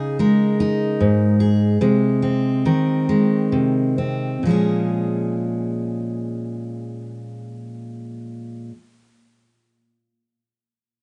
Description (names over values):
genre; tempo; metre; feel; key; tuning
folk; 43-51 BPM (dotted quarters); 6/8; straight; Bb minor; A4 = 440 Hz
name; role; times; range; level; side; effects
fingerpicked steel-string acoustic guitar; accompaniment; 0.0-8.7 s; Ab2 to Bb4; -21 LUFS; equal; none
room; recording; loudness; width
little or no reverb; dark, warm production, nothing above 10.3 kHz; -20 LUFS; mono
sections
0.0-4.4 A section; 4.4-7.2 B section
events
slowing down 0.0-4.4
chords
0.0 Dbsus2; 1.8 Ab/C; 4.4 Bbm7